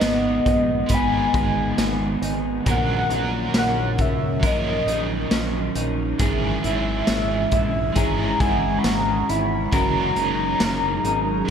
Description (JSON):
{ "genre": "dream pop", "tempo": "68 BPM", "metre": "4/4", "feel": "straight", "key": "unclear", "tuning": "A4 = 438 Hz", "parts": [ { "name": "warm velvety synth lead", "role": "melody", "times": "0.0-11.5 s", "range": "D#5 to B5", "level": "-25 LUFS", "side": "left 1 dB", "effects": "chorus, ping-pong delay" }, { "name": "crunchy overdriven guitar", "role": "accompaniment", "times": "0.0-11.5 s", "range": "G#2 to A#4", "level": "-28 LUFS", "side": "right 4 dB", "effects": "tremolo, lush chorus" }, { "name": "ethereal airy pad", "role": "sustained chords", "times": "0.0-11.5 s", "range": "A#2 to A#4", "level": "-28 LUFS", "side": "left 2 dB", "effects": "ensemble chorus, built-in reverb" }, { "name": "mellow electric guitar", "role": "arpeggios", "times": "0.0-11.5 s", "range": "G#2 to B4", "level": "-27 LUFS", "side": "right 1 dB", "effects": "wide subtle chorus, ping-pong delay" }, { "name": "chorused synth bass", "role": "bass", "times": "0.0-11.4 s", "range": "F#1 to C#2", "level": "-28 LUFS", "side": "equal", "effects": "none" }, { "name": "raw garage drum kit", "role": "drums", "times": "0.0-11.3 s", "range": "hi-hat, kick drum, snare drum, tambourine", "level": "-25 LUFS", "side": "equal", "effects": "gated reverb" }, { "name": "vibraphone with soft mallets", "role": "texture", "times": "0.0-10.6 s", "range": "A#4 to D#6", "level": "-36 LUFS", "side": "left 3 dB", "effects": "ping-pong delay" } ], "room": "moderate plate reverb, RT60 2.7 s", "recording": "bright 1980s-style digital production", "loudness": "-19 LUFS", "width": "side -7 dB against mid", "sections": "0.0-11.5 A section", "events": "none", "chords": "0.0 G#m; 2.7 F#6/A#; 6.2 C#m/G#; 9.7 F#6", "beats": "0.02 0.90 1.78 | 2.67 3.55 4.43 5.32 | 6.20 7.08 7.96 8.84 | 9.73 10.61 11.49" }